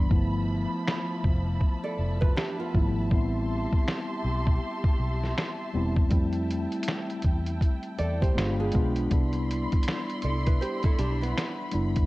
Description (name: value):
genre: lo-fi hip hop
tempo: 80 BPM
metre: 4/4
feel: swing 61% on 16ths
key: C major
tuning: A4 = 440 Hz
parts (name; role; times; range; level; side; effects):
- mellow tine electric piano; accompaniment; 0.0-12.1 s; E3 to F4; -31 LUFS; left 1 dB; medium stereo tremolo, cassette tape
- dark studio string section; sustained chords; 0.0-12.1 s; F3 to C6; -36 LUFS; equal; none
- vintage muted fingered electric bass; bass; 0.0-12.1 s; E1 to F2; -29 LUFS; equal; none
- lo-fi sampler-style drum kit; drums; 0.1-12.1 s; finger snaps, hi-hat, kick drum, snare drum; -25 LUFS; equal; none
- nylon-string guitar; second line; 1.8-3.1, 8.0-12.1 s; B3 to D5; -34 LUFS; right 2 dB; tape echo
room: little or no reverb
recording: cassette tape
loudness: -24 LUFS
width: side -20 dB against mid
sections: 0.0-12.1 A section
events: break 0.0-6.1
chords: 0.1 G13; 3.1 Am7; 6.1 Fmaj9; 8.4 G7b9; 9.1 Cmaj9